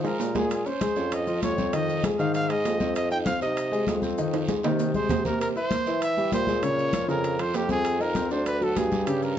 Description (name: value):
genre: Afro-Cuban jazz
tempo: 196 BPM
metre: 4/4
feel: straight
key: F minor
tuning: A4 = 439 Hz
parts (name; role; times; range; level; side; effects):
- warm baby grand piano; accompaniment; 0.0-9.3 s; Db3 to E5; -28 LUFS; left 2 dB; none
- mellow bassoon; bass; 0.0-9.4 s; D2 to F3; -29 LUFS; right 1 dB; none
- congas; percussion; 0.0-9.4 s; none; -32 LUFS; left 2 dB; none
- timbales; percussion; 0.0-9.2 s; none; -33 LUFS; right 6 dB; none
- clear trumpet; melody; 0.1-9.4 s; G4 to G5; -28 LUFS; right 1 dB; none
- maracas; percussion; 0.1-9.4 s; none; -48 LUFS; left 5 dB; none
- guiro; percussion; 0.2-9.4 s; none; -44 LUFS; right 6 dB; none
room: moderate large studio reverb, RT60 1.2 s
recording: dark, warm production, nothing above 7.9 kHz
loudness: -23 LUFS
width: side -10 dB against mid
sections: 0.0-9.4 A section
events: drum fill 0.0-0.5, 4.2-5.4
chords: 0.0 Fm; 0.5 Bbm9 (rootless); 1.7 Fm7; 5.4 C7; 6.6 Bbmadd9; 7.9 F5; 8.5 D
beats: 0.20 | 0.51 0.81 1.12 1.42 | 1.73 2.04 2.34 2.65 | 2.96 3.26 3.57 3.88 | 4.18 4.49 4.79 5.10 | 5.41 5.71 6.02 6.32 | 6.63 6.93 7.24 7.55 | 7.85 8.16 8.46 8.77 | 9.07 9.38